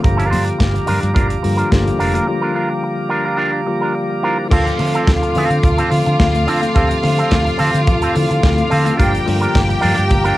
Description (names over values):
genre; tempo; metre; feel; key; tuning
disco; 107 BPM; 4/4; straight; D minor; A4 = 440 Hz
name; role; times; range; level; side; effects
electric guitar with an envelope filter; accompaniment; 0.0-10.4 s; C4 to C5; -20 LUFS; right 2 dB; cassette tape
tine electric piano; accompaniment; 0.0-10.4 s; D3 to D5; -22 LUFS; left 3 dB; medium stereo tremolo, cassette tape
mellow tonewheel organ; sustained chords; 0.0-10.4 s; G4 to D6; -22 LUFS; right 1 dB; slow rotary speaker, cassette tape
vintage muted fingered electric bass; bass; 0.0-10.3 s; F1 to D3; -19 LUFS; equal; none
modern studio drum kit; drums; 0.0-10.4 s; crash cymbal, hi-hat, kick drum, snare drum; -18 LUFS; equal; cassette tape
congas; percussion; 0.1-10.2 s; none; -26 LUFS; left 4 dB; none
clear studio string section; second line; 4.5-10.4 s; F4 to G5; -20 LUFS; equal; cassette tape
room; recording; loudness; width
light reverb; home recording on cassette; -13 LUFS; side -16 dB against mid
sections
0.0-4.5 A section; 4.5-10.4 B section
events
break 2.3-4.5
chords
0.0 Gm7; 4.5 Dm7; 9.0 Gm7